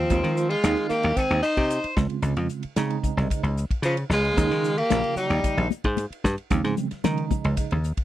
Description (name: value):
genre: electric jazz fusion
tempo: 113 BPM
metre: 4/4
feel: straight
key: Eb mixolydian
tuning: A4 = 440 Hz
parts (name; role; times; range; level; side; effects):
- breathy tenor saxophone; melody; 0.0-5.7 s; F3 to Eb4; -24 LUFS; equal; none
- crunchy overdriven guitar; second line; 0.0-5.7 s; C4 to C5; -29 LUFS; left 1 dB; none
- dry thumbed slap bass; bass; 0.0-8.0 s; Bb1 to Eb3; -25 LUFS; equal; none
- tine electric piano; accompaniment; 0.1-7.8 s; Db3 to F4; -29 LUFS; right 8 dB; overdrive, fast tremolo, phaser
- damped 70s drum kit; drums; 0.1-8.0 s; hi-hat, kick drum, ride cymbal, snare drum; -28 LUFS; left 1 dB; none
- congas; percussion; 4.4-7.9 s; none; -29 LUFS; left 16 dB; none
room: little or no reverb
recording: dry, close 1970s-style studio recording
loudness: -22 LUFS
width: side -13 dB against mid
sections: 0.0-8.0 A section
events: none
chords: 0.1 Ab6/Eb; 2.0 Dbmaj7; 4.4 Eb9sus4